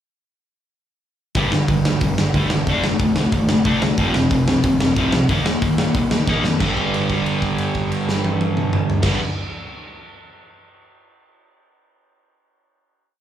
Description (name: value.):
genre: punk rock.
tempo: 183 BPM.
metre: 4/4.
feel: straight.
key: G minor.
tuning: A4 = 441 Hz.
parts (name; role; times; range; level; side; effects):
big rock drum kit; drums; 1.3-9.1 s; crash cymbal, hi-hat, kick drum, snare drum, toms; -22 LUFS; equal; none.
distorted electric guitar; riff; 1.4-9.2 s; F2 to Eb4; -23 LUFS; right 8 dB; distortion, slapback echo.
sludgy distorted guitar; riff; 1.4-9.2 s; F2 to Eb4; -20 LUFS; left 4 dB; overdrive, slapback echo.
fuzz picked electric bass; bass; 1.4-9.2 s; E1 to Bb2; -24 LUFS; equal; overdrive.
room: little or no reverb.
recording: live gig heard through the venue's PA, club reverb.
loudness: -16 LUFS.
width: side -10 dB against mid.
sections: 1.4-6.6 verse; 6.6-9.2 final chord.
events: drum fill 6.3-6.6; held note 6.6-9.0.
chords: 1.4 G5; 2.7 Dm/F; 4.0 F5; 5.3 Eb5; 6.6 G5.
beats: | 1.35 1.68 2.01 2.34 | 2.67 3.00 3.33 3.66 | 3.99 4.31 4.64 4.97 | 5.30 5.62 5.95 6.28 | 6.61 6.93 7.26 7.59 | 7.92 8.25 8.58 8.91.